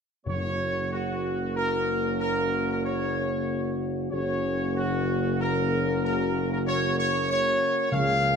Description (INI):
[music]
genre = classical, ceremonial fanfare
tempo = 94 BPM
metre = 3/4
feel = straight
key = F# major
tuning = A4 = 437 Hz
[part]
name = clear trumpet section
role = melody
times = 0.3-8.4 s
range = F#4 to E#5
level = -27 LUFS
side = equal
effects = none
[part]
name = dark French horn section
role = sustained chords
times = 0.3-8.4 s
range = C#4 to G#4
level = -31 LUFS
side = left 5 dB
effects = none
[part]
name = dark trombone section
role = sustained chords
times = 0.3-8.4 s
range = C#3 to A#3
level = -35 LUFS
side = right 2 dB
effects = none
[part]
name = mellow tuba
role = bass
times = 0.3-8.4 s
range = F#1 to C#2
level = -30 LUFS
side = right 4 dB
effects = none
[part]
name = timpani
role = percussion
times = 0.3-1.2, 7.9-8.4 s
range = F#2 to C#3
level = -32 LUFS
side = equal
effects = none
[sound]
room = wet scoring stage reverb, RT60 1.7 s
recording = none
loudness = -24 LUFS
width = side -6 dB against mid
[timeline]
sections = 0.3-8.4 A section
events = none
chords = 0.3 F#